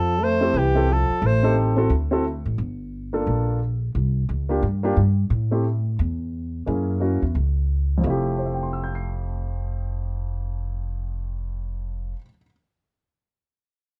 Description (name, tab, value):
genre	jazz, small-group swing and bop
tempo	176 BPM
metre	4/4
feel	swing 62% on 8ths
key	F major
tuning	A4 = 443 Hz
part	clear alto saxophone	melody	0.0-1.6 s	G4 to C5	-25 LUFS	equal	none
part	mellow trombone	second line	0.0-1.6 s	E3 to A3	-28 LUFS	equal	none
part	upright bass	bass	0.0-12.1 s	F1 to A2	-26 LUFS	equal	none
part	warm grand piano	accompaniment	0.4-12.5 s	F2 to C7	-27 LUFS	equal	none
room	light reverb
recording	none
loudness	-23 LUFS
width	mono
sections	0.0-2.6 A section; 2.6-8.0 B section; 8.0-10.8 C section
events	none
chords	0.0 Fmaj7; 1.2 Am7b5; 1.9 D7; 2.6 Gm7; 3.9 C9sus4; 5.3 A5; 6.7 Gb7; 8.0 Fmaj7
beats	0.20 0.54 0.88 | 1.22 1.56 1.90 2.24 | 2.58 2.92 3.27 3.61 | 3.95 4.29 4.63 4.97 | 5.31 5.65 5.99 6.33 | 6.67 7.01 7.36 7.70 | 8.04 8.38 8.72 9.06 | 9.40 9.74 10.09 10.43